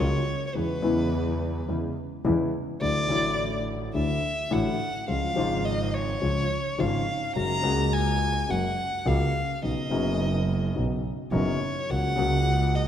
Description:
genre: tango.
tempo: 106 BPM.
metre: 4/4.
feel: rubato.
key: unclear.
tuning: A4 = 441 Hz.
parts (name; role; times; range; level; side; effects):
rich violin; second line; 0.0-12.9 s; B4 to A#5; -29 LUFS; left 1 dB; none.
dark grand piano; accompaniment; 0.0-12.9 s; F#1 to F#4; -27 LUFS; left 2 dB; none.
warm double bass; bass; 0.0-12.9 s; F#1 to E2; -29 LUFS; right 2 dB; none.
room: moderate concert hall reverb, RT60 2.2 s.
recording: recorded in a church or concert hall.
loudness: -24 LUFS.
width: side -9 dB against mid.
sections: 0.0-12.9 A section.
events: violin solo 0.0-12.9.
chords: 0.0 F#maj7; 0.5 C#m7/E; 2.8 Dadd9; 5.1 C#; 7.4 F#add9; 9.6 Badd9; 11.9 F#/C#.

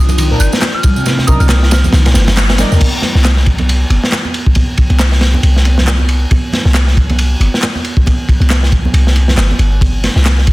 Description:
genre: breakbeat, breaks.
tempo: 137 BPM.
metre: 4/4.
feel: swing 58% on 16ths.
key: C minor.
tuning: A4 = 440 Hz.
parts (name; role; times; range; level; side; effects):
warbly tape-like pad; sustained chords; 0.0-2.8 s; Eb3 to F4; -26 LUFS; left 1 dB; none.
warm 808-style bass; bass; 0.0-10.5 s; G1 to Eb2; -10 LUFS; equal; tube saturation.
crunchy breakbeat drum kit; drums; 0.1-10.5 s; crash cymbal, kick drum, ride cymbal, snare drum; -13 LUFS; equal; none.
electronic tambourine and handclaps; drums; 0.1-10.4 s; none; -22 LUFS; equal; none.
congas; percussion; 0.1-10.2 s; none; -22 LUFS; right 2 dB; none.
picked electric bass; riff; 0.2-2.8 s; Bb2 to G3; -19 LUFS; equal; none.
warm studio string section; stabs; 0.3-2.7 s; D4 to Bb4; -24 LUFS; right 1 dB; dub echo.
soft synth bell; melody; 0.4-2.0 s; Eb6 to G6; -23 LUFS; right 1 dB; chorus, AM radio sound, dub echo.
room: studio reverb.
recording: dense, heavily limited modern master.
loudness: -9 LUFS.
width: side -19 dB against mid.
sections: 0.0-2.8 A section; 2.8-10.5 B section.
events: drop 0.0-2.8; band accent 2.4.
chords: 0.0 Cm9; 2.8 N.C..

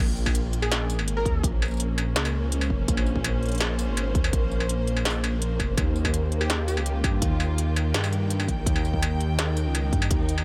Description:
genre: half-time drum and bass.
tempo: 166 BPM.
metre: 4/4.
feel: half-time.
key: Bb dorian.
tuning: A4 = 439 Hz.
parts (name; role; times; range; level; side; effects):
warm studio string section; sustained chords; 0.0-10.4 s; Bb2 to G5; -34 LUFS; equal; sidechain pumping.
dark detuned saw bass; bass; 0.0-10.4 s; F1 to G2; -28 LUFS; equal; none.
industrial drum kit; drums; 0.2-10.4 s; hi-hat, snare drum, struck metal, tambourine; -32 LUFS; equal; none.
electronic kick drum; drums; 0.3-10.2 s; none; -29 LUFS; equal; none.
plucky unison lead; melody; 0.6-1.4, 6.4-7.2 s; G4 to Bb4; -36 LUFS; equal; lush chorus, delay.
room: little or no reverb.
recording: none.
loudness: -25 LUFS.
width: mono.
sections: 0.0-10.4 A section.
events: drop 0.0-10.4.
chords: 0.0 Bbmadd9; 5.8 Ebadd9.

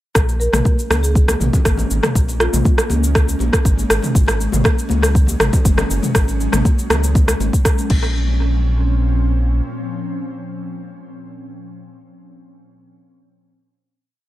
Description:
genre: afro house.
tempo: 120 BPM.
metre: 4/4.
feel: straight.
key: Bb minor.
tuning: A4 = 445 Hz.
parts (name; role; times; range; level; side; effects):
ethereal airy pad; sustained chords; 0.9-11.0 s; Bb2 to Db4; -26 LUFS; equal; ensemble chorus, built-in reverb, sidechain pumping.
round analog bass; bass; 0.2-9.6 s; Gb1 to Db2; -18 LUFS; equal; sidechain pumping.
deep house drum kit; drums; 0.2-8.0 s; cabasa, crash cymbal, rim click, toms; -20 LUFS; equal; overdrive, tape echo.
electronic kick drum; drums; 0.2-8.0 s; none; -15 LUFS; equal; none.
congas; percussion; 0.3-8.1 s; none; -27 LUFS; left 4 dB; tape echo.
marimba with soft mallets; melody; 0.4-2.9 s; F4 to Bb4; -27 LUFS; right 1 dB; tape echo.
room: digital ambience.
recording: echo-heavy mix.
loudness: -14 LUFS.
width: side -15 dB against mid.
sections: 0.2-8.2 drop; 8.2-12.2 final hit.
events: drop 0.2-8.2.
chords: 0.2 Bbm7; 4.2 Ab7sus4; 7.9 Bbm.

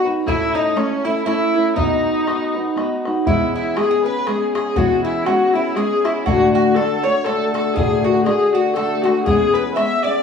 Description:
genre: celtic folk, Celtic waltz.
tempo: 120 BPM.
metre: 3/4.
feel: swing 57% on 8ths.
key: B mixolydian, E mixolydian from 3.3 s.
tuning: A4 = 440 Hz.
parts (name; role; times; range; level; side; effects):
rich viola; melody; 0.0-10.2 s; C#4 to E5; -19 LUFS; left 2 dB; none.
Irish bouzouki; second line; 0.0-10.2 s; C#4 to E5; -23 LUFS; right 1 dB; none.
picked steel-string acoustic guitar; accompaniment; 0.0-10.2 s; D2 to B4; -20 LUFS; left 1 dB; none.
bodhran; percussion; 0.3-9.9 s; none; -26 LUFS; left 2 dB; none.
room: wet studio reverb, RT60 0.9 s.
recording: band playing live in one room, studio reverb.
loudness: -15 LUFS.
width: side -6 dB against mid.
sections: 0.0-3.3 A section; 3.3-10.2 B section.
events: none.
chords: 0.3 A; 1.8 B; 3.3 E6; 6.3 D; 9.3 E6.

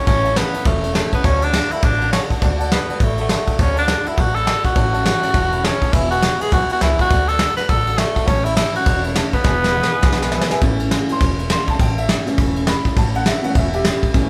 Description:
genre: rockabilly.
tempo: 205 BPM.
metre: 4/4.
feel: swing 61% on 8ths.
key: A major.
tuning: A4 = 440 Hz.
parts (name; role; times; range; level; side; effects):
raspy tenor saxophone; melody; 0.0-10.5 s; A3 to B4; -22 LUFS; equal; none.
picked steel-string acoustic guitar; accompaniment; 0.0-14.3 s; E2 to F#4; -30 LUFS; equal; none.
warm upright piano; accompaniment; 0.0-14.3 s; E3 to C6; -28 LUFS; equal; none.
upright bass; bass; 0.1-14.3 s; E1 to D2; -25 LUFS; equal; none.
soft brush drum kit; drums; 0.1-14.2 s; kick drum, ride cymbal, snare drum; -21 LUFS; equal; none.
room: moderate large studio reverb, RT60 1.2 s.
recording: band playing live in one room.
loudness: -18 LUFS.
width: mono.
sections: 0.0-10.6 A section; 10.6-14.3 B section.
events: drum fill 9.5-10.6; upright piano fill 10.0-10.6; upright piano solo 10.6-14.3.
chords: 0.0 A; 1.2 D; 4.8 A; 5.9 E; 7.1 D; 8.3 A; 9.5 E; 10.6 A.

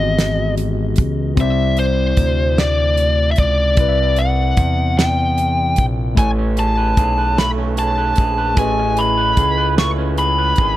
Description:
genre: slow six-eight R&B.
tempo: 50 BPM (dotted quarters).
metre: 6/8.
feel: straight.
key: unclear.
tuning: A4 = 440 Hz.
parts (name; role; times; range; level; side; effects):
biting lead guitar; melody; 0.0-10.8 s; C5 to C#6; -19 LUFS; left 1 dB; overdrive, tape echo.
barky tine electric piano; accompaniment; 0.0-10.8 s; C3 to E5; -23 LUFS; left 4 dB; phaser.
smooth synth bass; bass; 0.0-10.8 s; G#1 to E2; -19 LUFS; equal; none.
damped 70s drum kit; drums; 0.2-10.8 s; hi-hat, kick drum, snare drum; -17 LUFS; right 1 dB; none.
electric guitar at the edge of break-up; second line; 6.2-10.8 s; A3 to B4; -24 LUFS; right 9 dB; none.
room: small room reverb.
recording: none.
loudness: -14 LUFS.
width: side -14 dB against mid.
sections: 0.0-10.8 A section.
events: none.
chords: 0.0 Emaj9; 1.4 Cmaj9; 6.2 Amaj9.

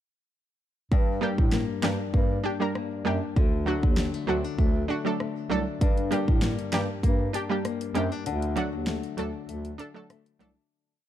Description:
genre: dancehall.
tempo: 98 BPM.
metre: 4/4.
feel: straight.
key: G harmonic minor.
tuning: A4 = 440 Hz.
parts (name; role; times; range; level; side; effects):
flamenco guitar; arpeggios; 0.9-11.1 s; G2 to D4; -32 LUFS; left 6 dB; ping-pong delay.
mellow bass clarinet; bass; 0.9-10.5 s; C2 to A2; -30 LUFS; right 1 dB; none.
pop drum kit; drums; 0.9-10.6 s; finger snaps, hi-hat, kick drum, rim click, snare drum; -25 LUFS; equal; none.
analog pluck; accompaniment; 1.2-10.5 s; F#3 to Bb4; -29 LUFS; right 3 dB; chorus.
room: small room ambience.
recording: dark, warm production.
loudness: -24 LUFS.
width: side -11 dB against mid.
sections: 0.9-10.7 verse.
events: break 8.3-10.7; fade-out 8.3-10.7.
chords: 0.9 Gm; 3.4 D; 5.8 Gm; 8.3 D.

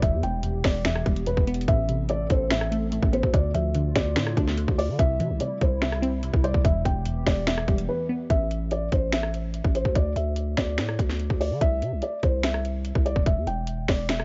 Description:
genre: hip hop, trap.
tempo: 145 BPM.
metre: 4/4.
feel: half-time.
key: A minor.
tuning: A4 = 440 Hz.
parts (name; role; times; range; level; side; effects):
felt-muted upright piano; melody; 0.0-14.2 s; B4 to G5; -32 LUFS; equal; low-pass filter.
glassy wavetable pluck; accompaniment; 0.0-8.3 s; E2 to D5; -32 LUFS; equal; chorus, low-pass filter.
hollow soft pad; sustained chords; 0.0-8.3 s; C3 to A4; -39 LUFS; equal; ensemble chorus.
growling 808-style bass; bass; 0.0-14.2 s; E1 to D3; -30 LUFS; equal; none.
trap drum kit; drums; 0.0-14.2 s; finger snaps, hi-hat, kick drum, rim click, snare drum; -27 LUFS; equal; none.
room: digital ambience.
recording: worn, warbling old tape, cassette tape, warbly pitch drift, nothing above 7.7 kHz.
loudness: -25 LUFS.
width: mono.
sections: 0.0-8.3 A section; 8.3-14.2 B section.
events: break 7.9-8.3.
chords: 0.0 Em; 1.7 Amadd9; 3.3 Dm; 5.0 C; 6.6 Em; 8.3 A5; 10.0 D5; 11.6 C; 13.3 Em.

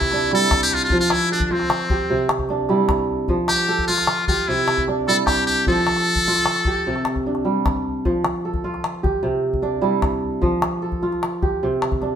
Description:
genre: west african traditional, West African string and xylophone music.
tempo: 101 BPM (dotted quarters).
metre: 12/8.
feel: straight.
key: F major.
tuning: A4 = 440 Hz.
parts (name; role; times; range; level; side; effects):
trumpet with metal mute; melody; 0.0-7.2 s; C4 to A4; -20 LUFS; left 1 dB; none.
kora; arpeggios; 0.0-12.2 s; C3 to A4; -21 LUFS; right 2 dB; none.
calabash; percussion; 0.0-12.1 s; none; -24 LUFS; left 2 dB; none.
room: wet studio reverb, RT60 0.8 s.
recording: band playing live in one room.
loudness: -18 LUFS.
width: side -8 dB against mid.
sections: 0.0-12.2 A section.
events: none.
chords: 0.0 C; 0.9 F; 2.1 C; 3.3 F; 4.5 C; 5.7 F; 6.9 C5; 8.0 F; 9.2 C; 10.4 F; 11.6 C5.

